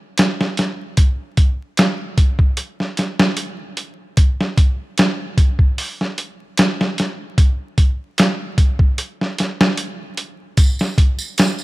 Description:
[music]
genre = trip hop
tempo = 75 BPM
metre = 4/4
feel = swing 53% on 16ths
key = none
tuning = none
[part]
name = boom bap sampler-style drum kit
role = drums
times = 0.2-11.6 s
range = hi-hat, kick drum, snare drum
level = -15 LUFS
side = equal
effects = none
[part]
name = tambourine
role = percussion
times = 10.6-11.6 s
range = none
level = -27 LUFS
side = right 3 dB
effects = none
[sound]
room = light reverb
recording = vinyl crackle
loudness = -16 LUFS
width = side -20 dB against mid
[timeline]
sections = 0.0-11.6 A section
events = none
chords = none

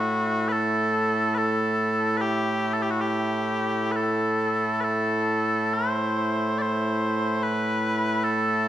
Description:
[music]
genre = celtic folk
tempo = 66-74 BPM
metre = 3/4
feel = rubato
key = A dorian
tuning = A4 = 438 Hz
[part]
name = mellow small bagpipes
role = solo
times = 0.0-8.7 s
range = A2 to D5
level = -22 LUFS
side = equal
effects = none
[sound]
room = moderate recital hall reverb, RT60 1.4 s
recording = minimal, uncompressed stereo recording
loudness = -22 LUFS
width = side -12 dB against mid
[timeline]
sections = 0.0-8.7 A section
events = none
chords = none

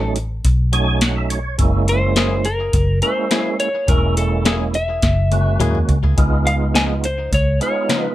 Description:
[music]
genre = straight-eighth soul blues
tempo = 105 BPM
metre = 4/4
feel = straight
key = F# mixolydian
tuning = A4 = 440 Hz
[part]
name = electric slide guitar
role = melody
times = 0.0-8.1 s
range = A4 to G#5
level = -21 LUFS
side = left 1 dB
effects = plate reverb
[part]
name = percussive tonewheel organ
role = accompaniment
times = 0.0-8.1 s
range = F#3 to G#5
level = -22 LUFS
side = right 5 dB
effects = slow rotary speaker, overdrive, chorus vibrato
[part]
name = vintage muted fingered electric bass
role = bass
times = 0.0-7.6 s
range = E1 to D#2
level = -18 LUFS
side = equal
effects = none
[part]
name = soft vintage rhythm box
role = drums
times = 0.2-8.0 s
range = hi-hat, kick drum, snare drum, toms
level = -19 LUFS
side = equal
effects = none
[part]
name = direct-recorded clean electric guitar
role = stabs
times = 2.2-8.1 s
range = C#3 to G#4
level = -25 LUFS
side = left 6 dB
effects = digital delay
[sound]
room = light reverb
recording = none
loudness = -15 LUFS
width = side -14 dB against mid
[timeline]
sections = 0.0-8.1 A section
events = tonewheel organ fill 0.4-1.6; drum fill 5.0-6.2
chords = 0.0 B9; 1.6 F#9; 6.2 C#9

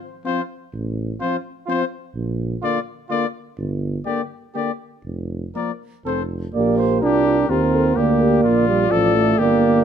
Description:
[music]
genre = classical, brass quintet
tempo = 126 BPM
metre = 3/4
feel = straight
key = Bb major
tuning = A4 = 440 Hz
[part]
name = dark French horn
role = accompaniment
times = 0.2-9.8 s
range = Bb3 to Bb4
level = -25 LUFS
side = left 5 dB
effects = none
[part]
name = clear trumpet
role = melody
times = 0.3-9.8 s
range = F4 to D5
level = -25 LUFS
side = left 10 dB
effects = none
[part]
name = warm flugelhorn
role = second line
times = 0.3-9.8 s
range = F4 to D5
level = -25 LUFS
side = right 6 dB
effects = none
[part]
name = dark trombone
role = accompaniment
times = 0.3-9.8 s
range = D3 to D4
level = -19 LUFS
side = right 2 dB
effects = none
[part]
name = mellow tuba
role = bass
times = 0.7-9.8 s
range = F1 to Eb2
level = -24 LUFS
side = right 2 dB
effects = none
[sound]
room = light reverb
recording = none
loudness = -18 LUFS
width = side -8 dB against mid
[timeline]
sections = 0.0-6.5 A section; 6.5-9.8 B section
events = none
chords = 0.0 F5; 0.7 F/A; 2.1 Bb; 3.6 Gm; 5.0 Bb5/F; 6.0 F; 6.5 Bb

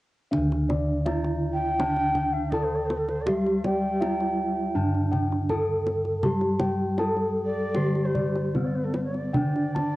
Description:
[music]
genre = Javanese gamelan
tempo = 80 BPM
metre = 4/4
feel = uneven beats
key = D slendro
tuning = A4 = 439 Hz
[part]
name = gamelan-type bronze metallophone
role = melody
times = 0.3-10.0 s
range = C4-40c to A4+20c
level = -28 LUFS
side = right 1 dB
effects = cassette tape
[part]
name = gamelan-type bronze metallophone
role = accompaniment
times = 0.3-10.0 s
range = D3 to G3-20c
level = -30 LUFS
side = equal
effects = cassette tape
[part]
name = gamelan-type bossed gongs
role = arpeggios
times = 0.3-10.0 s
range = C5-40c to A5+20c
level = -34 LUFS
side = left 2 dB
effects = cassette tape
[part]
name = gamelan-type bossed gongs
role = bass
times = 0.3-10.0 s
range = D2 to G4-20c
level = -29 LUFS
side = equal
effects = none
[part]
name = kendang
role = percussion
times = 0.3-9.9 s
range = none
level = -31 LUFS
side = right 1 dB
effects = none
[part]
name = breathy mellow bansuri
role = second line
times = 1.5-10.0 s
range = A4 to G5-20c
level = -30 LUFS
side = right 1 dB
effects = cassette tape, tape echo
[sound]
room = light reverb, studio ambience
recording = home recording on cassette, nothing above 10.5 kHz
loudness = -23 LUFS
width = side -17 dB against mid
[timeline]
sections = 0.3-10.0 A section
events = none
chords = none

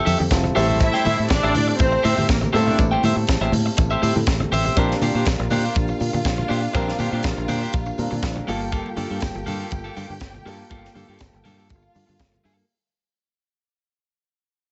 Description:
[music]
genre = disco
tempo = 121 BPM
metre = 4/4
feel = straight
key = G dorian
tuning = A4 = 440 Hz
[part]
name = clear grand piano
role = accompaniment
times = 0.0-12.7 s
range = G3 to Bb4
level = -31 LUFS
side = equal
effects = none
[part]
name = electric guitar at the edge of break-up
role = accompaniment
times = 0.0-12.6 s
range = Bb3 to G5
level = -28 LUFS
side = equal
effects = none
[part]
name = percussive tonewheel organ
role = sustained chords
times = 0.0-12.7 s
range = F3 to A4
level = -33 LUFS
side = equal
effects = chorus vibrato, slow rotary speaker
[part]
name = fingered electric bass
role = bass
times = 0.1-12.6 s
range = F1 to Bb2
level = -26 LUFS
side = equal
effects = none
[part]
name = tight funk drum kit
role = drums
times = 0.1-12.6 s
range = hi-hat, kick drum, snare drum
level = -27 LUFS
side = equal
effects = none
[part]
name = congas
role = percussion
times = 0.1-12.6 s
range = none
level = -34 LUFS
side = equal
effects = none
[part]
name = tambourine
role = percussion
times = 0.1-12.7 s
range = none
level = -45 LUFS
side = equal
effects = none
[part]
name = rich studio string section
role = second line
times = 0.8-12.4 s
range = Bb3 to G5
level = -30 LUFS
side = equal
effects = none
[sound]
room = light reverb, small room ambience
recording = nothing above 8.0 kHz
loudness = -21 LUFS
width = mono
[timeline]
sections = 0.0-4.8 A section; 4.8-12.7 B section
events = fade-out 4.8-12.7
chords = 0.0 Fmaj9; 0.6 Am7; 4.8 Bb69; 8.5 Gm9

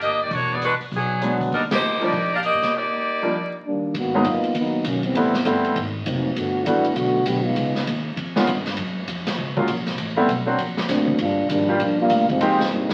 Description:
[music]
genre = jazz, big band swing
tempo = 198 BPM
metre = 4/4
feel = swing 63% on 8ths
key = unclear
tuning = A4 = 440 Hz
[part]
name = edgy saxophone section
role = melody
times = 0.0-3.7 s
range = F#3 to F5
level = -24 LUFS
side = equal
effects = none
[part]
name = upright bass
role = bass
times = 0.0-12.9 s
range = E1 to Bb2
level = -31 LUFS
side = equal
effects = none
[part]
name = swinging big-band drum kit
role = drums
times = 0.0-12.9 s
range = hi-hat, kick drum, ride cymbal, snare drum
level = -32 LUFS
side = equal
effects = none
[part]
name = clear baby grand piano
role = accompaniment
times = 1.2-12.6 s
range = Eb3 to G4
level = -24 LUFS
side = equal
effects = none
[part]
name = muted trombone section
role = second line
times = 3.7-7.9, 10.9-12.9 s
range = D3 to G4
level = -24 LUFS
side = equal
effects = none
[sound]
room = wet studio reverb, RT60 0.9 s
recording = very old 78 rpm record, vinyl crackle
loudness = -22 LUFS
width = mono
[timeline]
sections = 0.0-3.9 A section; 3.9-12.9 B section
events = band accent 1.7; break 2.7-3.9; trombone section solo 3.9-12.9; drum fill 12.7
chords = 0.3 E9; 1.5 Ebmaj7; 3.9 Abm9; 5.2 Am9; 5.8 Ab13; 6.4 Gmaj9; 7.6 Db9; 8.8 Gbmaj7; 10.0 Am9; 10.6 Daug7; 11.2 Gm7; 12.4 Fm11

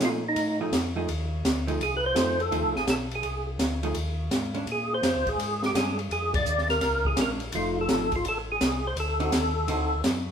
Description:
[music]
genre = soul jazz organ trio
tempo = 168 BPM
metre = 4/4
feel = swing 66% on 8ths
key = unclear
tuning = A4 = 440 Hz
[part]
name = percussive tonewheel organ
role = melody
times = 0.0-10.0 s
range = Eb4 to D5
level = -27 LUFS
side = equal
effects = chorus vibrato, slow rotary speaker
[part]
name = hollow-body jazz guitar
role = accompaniment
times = 0.0-9.9 s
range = D3 to G#4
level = -32 LUFS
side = right 2 dB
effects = none
[part]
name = mellow tonewheel organ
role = bass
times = 0.0-10.3 s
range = F1 to Bb2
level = -32 LUFS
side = equal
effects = slow rotary speaker
[part]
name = open jazz drum kit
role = drums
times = 0.0-10.1 s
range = hi-hat, kick drum, ride cymbal, snare drum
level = -29 LUFS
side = equal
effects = none
[sound]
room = moderate large studio reverb, RT60 1.3 s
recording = band playing live in one room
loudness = -24 LUFS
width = side -7 dB against mid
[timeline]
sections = 0.0-10.3 A section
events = band accent 6.3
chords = 0.0 F7#9; 4.7 Bb7#9; 7.5 F7#9; 9.0 D7b9

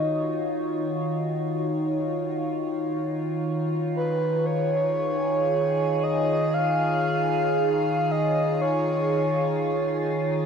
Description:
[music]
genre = ambient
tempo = free time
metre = none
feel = none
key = unclear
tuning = A4 = 440 Hz
[part]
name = breathy flute-like synth lead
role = melody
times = 0.0-10.1 s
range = Cb5 to F5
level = -26 LUFS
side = equal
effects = chorus, tremolo, ping-pong delay
[part]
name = evolving wavetable pad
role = sustained chords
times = 0.0-10.5 s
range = Eb3 to Db5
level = -25 LUFS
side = equal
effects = chorus, built-in reverb, phaser
[sound]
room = wet huge ambient reverb, RT60 7.7 s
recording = dark, warm production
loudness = -22 LUFS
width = side -6 dB against mid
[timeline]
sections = 0.0-10.5 A section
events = none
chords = 0.0 Ebm7; 2.4 Db/Eb

